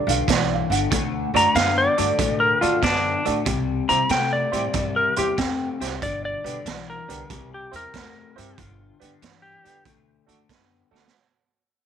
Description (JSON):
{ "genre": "electric blues shuffle", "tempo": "94 BPM", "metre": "4/4", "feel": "swing 68% on 8ths", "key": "unclear", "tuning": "A4 = 440 Hz", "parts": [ { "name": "dark upright piano", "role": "second line", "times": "0.0-1.3 s", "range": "D5 to F#5", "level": "-26 LUFS", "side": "right 12 dB", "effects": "none" }, { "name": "electric guitar through a small old amp", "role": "riff", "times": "0.0-11.1 s", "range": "G2 to B3", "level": "-28 LUFS", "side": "left 12 dB", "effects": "lush chorus" }, { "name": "upright bass", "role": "bass", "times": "0.1-11.1 s", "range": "G1 to C3", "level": "-30 LUFS", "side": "equal", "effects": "none" }, { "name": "raw garage drum kit", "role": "drums", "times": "0.1-11.2 s", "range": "hi-hat, kick drum, snare drum", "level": "-27 LUFS", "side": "right 6 dB", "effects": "none" }, { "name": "clear concert grand piano", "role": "accompaniment", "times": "1.3-11.0 s", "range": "A3 to D5", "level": "-29 LUFS", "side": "right 11 dB", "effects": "none" }, { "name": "clean lap steel guitar", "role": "melody", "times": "1.4-9.8 s", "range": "C4 to Bb5", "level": "-21 LUFS", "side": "left 1 dB", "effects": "none" } ], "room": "moderate spring reverb, RT60 1.7 s, small room ambience", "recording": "1960s-style stereo with parts hard left and right", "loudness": "-19 LUFS", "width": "side -8 dB against mid", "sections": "0.0-11.1 A section", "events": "fade-out 0.0-11.1; drum fill 10.8-11.1", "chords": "0.0 G; 0.9 D; 3.5 C; 6.0 G; 7.3 C; 8.6 G; 9.8 D", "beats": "0.28 | 0.91 1.55 2.19 2.82 | 3.46 4.10 4.74 5.38 | 6.01 6.65 7.29 7.93 | 8.57 9.21 9.85 10.49" }